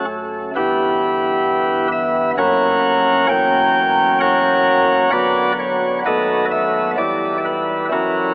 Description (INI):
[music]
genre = classical, chorale-style piece for pipe organ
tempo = 65 BPM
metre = 3/4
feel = rubato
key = unclear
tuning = A4 = 436 Hz
[part]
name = chamber organ, sparkling flutes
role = solo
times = 0.0-8.3 s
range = D1 to G5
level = -14 LUFS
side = equal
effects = none
[sound]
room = wet huge ambient reverb, RT60 7.8 s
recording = in a vast, echoing space, telephone sound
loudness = -14 LUFS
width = side -25 dB against mid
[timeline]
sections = 0.0-8.3 A section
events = none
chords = 0.0 F#m; 0.5 Em/G; 2.4 F#; 3.3 F#7/E; 5.1 Bm/D; 6.1 B7/D#; 7.0 Em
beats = | 0.55 1.45 2.37 | 3.29 4.21 5.13 | 6.06 6.98 7.92